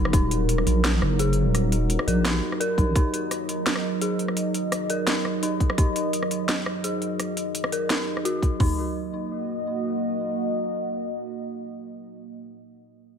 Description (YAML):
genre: half-time drum and bass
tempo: 170 BPM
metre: 4/4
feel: half-time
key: Eb minor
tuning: A4 = 439 Hz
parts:
  - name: deep dark ambient pad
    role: sustained chords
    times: 0.0-12.2 s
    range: Gb3 to Eb5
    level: -28 LUFS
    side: right 2 dB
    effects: chorus, built-in reverb, sidechain pumping
  - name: dark detuned synth bell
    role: arpeggios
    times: 0.0-8.8 s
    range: Eb4 to Bb4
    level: -29 LUFS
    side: left 2 dB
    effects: chorus, low-pass filter, ping-pong delay
  - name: deep soft wobble bass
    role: bass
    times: 0.0-2.9 s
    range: Eb1 to Bb1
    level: -22 LUFS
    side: equal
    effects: chorus
  - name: drum and bass drum kit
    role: drums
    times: 0.1-0.2, 2.8-3.0, 5.6-5.9, 8.4-8.7 s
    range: hi-hat, kick drum, toms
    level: -22 LUFS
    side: equal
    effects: none
  - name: drum and bass drum kit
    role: drums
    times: 0.1-8.5 s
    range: hi-hat, rim click, snare drum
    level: -28 LUFS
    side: equal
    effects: none
room: light reverb, digital ambience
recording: none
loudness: -22 LUFS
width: side -7 dB against mid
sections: 0.0-8.6 A section; 8.6-11.4 B section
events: none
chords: 0.0 Ebm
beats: | 0.13 0.48 0.84 1.19 | 1.54 1.90 2.25 2.60 | 2.96 3.31 3.66 4.01 | 4.37 4.72 5.07 5.43 | 5.78 6.13 6.49 6.84 | 7.19 7.54 7.90 8.25 | 8.60 8.96 9.31 9.66 | 10.02 10.37 10.72 11.07